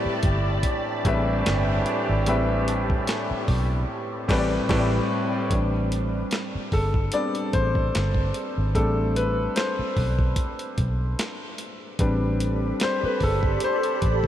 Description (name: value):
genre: R&B, neo-soul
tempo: 74 BPM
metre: 4/4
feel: swing 54% on 16ths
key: A minor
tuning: A4 = 441 Hz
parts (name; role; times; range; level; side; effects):
- clear grand piano; accompaniment; 0.0-14.3 s; A2 to E5; -26 LUFS; left 2 dB; none
- soft string machine; sustained chords; 0.0-5.5, 12.3-14.3 s; G4 to B5; -31 LUFS; right 1 dB; phaser, ensemble chorus
- vintage muted fingered electric bass; bass; 0.1-14.3 s; G1 to B1; -25 LUFS; equal; none
- dusty soul sampler-style drum kit; drums; 0.2-14.3 s; crash cymbal, handclaps, hi-hat, kick drum, snare drum; -28 LUFS; equal; none
- clear horn section; stabs; 0.6-4.9 s; E3 to G4; -31 LUFS; right 3 dB; diffuse ambient delay
- hollow-body jazz guitar; second line; 4.7-5.0 s; E4 to G4; -35 LUFS; right 5 dB; none
room: moderate huge ambient reverb, RT60 4.1 s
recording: dreamy mix soaked in reverb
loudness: -22 LUFS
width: side -11 dB against mid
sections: 0.0-5.5 A section; 5.5-14.3 B section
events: band accent 3.9-5.5; grand piano solo 5.5-14.3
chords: 0.0 Am11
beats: 0.64 1.45 | 2.26 3.07 3.88 4.69 | 5.50 6.31 7.12 7.93 | 8.74 9.56 10.37 11.18 | 11.99 12.80 13.61